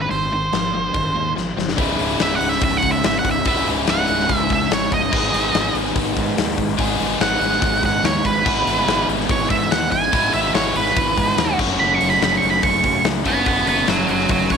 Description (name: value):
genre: classic rock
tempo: 144 BPM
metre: 4/4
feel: straight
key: C# minor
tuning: A4 = 440 Hz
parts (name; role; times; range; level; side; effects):
- octave-fuzz lead guitar; melody; 0.0-14.6 s; B4 to C#6; -20 LUFS; right 4 dB; distortion
- biting overdriven guitar; riff; 0.0-14.6 s; C#2 to G#4; -21 LUFS; equal; none
- fuzz fingered electric bass; bass; 0.0-14.6 s; C#1 to G#2; -27 LUFS; equal; overdrive
- huge arena drum kit; drums; 0.1-14.6 s; crash cymbal, hi-hat, kick drum, snare drum; -23 LUFS; left 4 dB; none
room: light reverb, small room ambience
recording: 1960s-style stereo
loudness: -16 LUFS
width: side -6 dB against mid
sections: 0.0-1.8 A section; 1.8-14.6 B section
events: drum fill 1.4-1.8; lead electric guitar solo 1.8-14.6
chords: 0.0 G#; 1.8 C#m; 5.1 G#m; 8.5 E/G#; 11.6 F#m